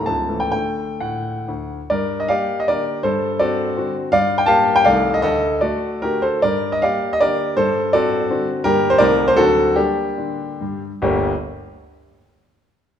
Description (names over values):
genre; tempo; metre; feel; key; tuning
classical, romantic triple-time dance for piano with dotted rhythms; 120-179 BPM; 3/4; rubato; G minor; A4 = 441 Hz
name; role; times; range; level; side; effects
warm grand piano; solo; 0.0-11.3 s; C#1 to A5; -16 LUFS; equal; none
room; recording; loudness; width
wet recital hall reverb, RT60 1.5 s; none; -16 LUFS; side -8 dB against mid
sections
0.0-1.9 A section; 1.9-11.0 B section; 11.0-12.2 C section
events
slowing down 8.1-11.0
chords
0.1 A/C#; 0.5 D; 1.9 Gm; 3.0 D7/G; 4.1 Gm; 4.9 Adim/C; 5.2 D; 6.4 Gm; 7.6 D7/G; 8.6 Gm; 9.0 Adim/C; 9.4 D7; 9.8 Gm